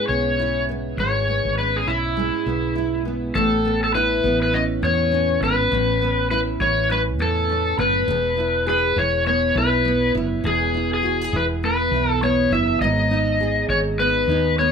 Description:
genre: acoustic pop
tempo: 102 BPM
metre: 4/4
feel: swing 60% on 16ths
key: unclear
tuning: A4 = 440 Hz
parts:
  - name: overdriven slide guitar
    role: melody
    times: 0.0-14.7 s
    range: E4 to E5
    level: -20 LUFS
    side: left 2 dB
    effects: none
  - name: nylon-string guitar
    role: accompaniment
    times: 0.0-14.7 s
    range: E2 to G#4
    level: -24 LUFS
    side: right 2 dB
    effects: double-tracked left and right
  - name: woody fretless electric bass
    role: bass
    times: 0.1-14.7 s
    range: E1 to E2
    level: -25 LUFS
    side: right 1 dB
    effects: none
room: moderate studio reverb, RT60 0.6 s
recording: rough home demo mix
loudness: -18 LUFS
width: side -6 dB against mid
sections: 0.0-3.3 A section; 3.3-14.7 B section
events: none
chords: 0.0 C#m7/G#; 3.3 Aadd9; 8.1 E; 12.8 G#m

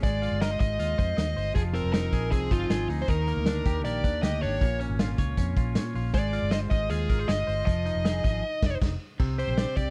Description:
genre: jangly indie pop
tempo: 157 BPM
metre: 4/4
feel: straight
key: unclear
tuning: A4 = 442 Hz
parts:
  - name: dark smooth lead guitar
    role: melody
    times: 0.0-9.9 s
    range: F4 to Eb5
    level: -33 LUFS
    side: equal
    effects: overdrive, slapback echo
  - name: twelve-string electric guitar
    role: arpeggios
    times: 0.0-9.9 s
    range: Bb2 to Eb5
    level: -35 LUFS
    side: equal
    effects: none
  - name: vintage muted fingered electric bass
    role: bass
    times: 0.0-9.9 s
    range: F1 to Bb2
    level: -32 LUFS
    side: equal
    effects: none
  - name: raw garage drum kit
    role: drums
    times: 0.0-9.9 s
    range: crash cymbal, hi-hat, kick drum, snare drum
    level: -30 LUFS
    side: equal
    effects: none
room: studio reverb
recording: dry, close 1970s-style studio recording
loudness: -27 LUFS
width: mono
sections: 0.0-9.2 A section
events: band accent 8.4-9.2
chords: 0.0 Ab6; 1.6 Fm7; 3.1 Ebmaj7; 4.6 Bbm7; 6.1 Ab6; 7.7 Fm7; 9.2 Csus2

